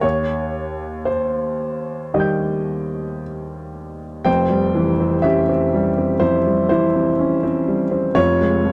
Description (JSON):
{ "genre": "neoclassical minimalist piano", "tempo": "56-62 BPM", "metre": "4/4", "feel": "rubato", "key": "unclear", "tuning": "A4 = 441 Hz", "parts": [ { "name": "clear upright piano", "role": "solo", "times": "0.0-8.7 s", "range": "F1 to G6", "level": "-20 LUFS", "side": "equal", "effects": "none" } ], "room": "small room ambience", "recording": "dry, close 1970s-style studio recording", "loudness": "-19 LUFS", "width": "mono", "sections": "0.0-4.3 A section; 4.3-8.7 B section", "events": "none", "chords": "0.0 Cm/Eb; 4.3 C/F; 8.2 Db/F" }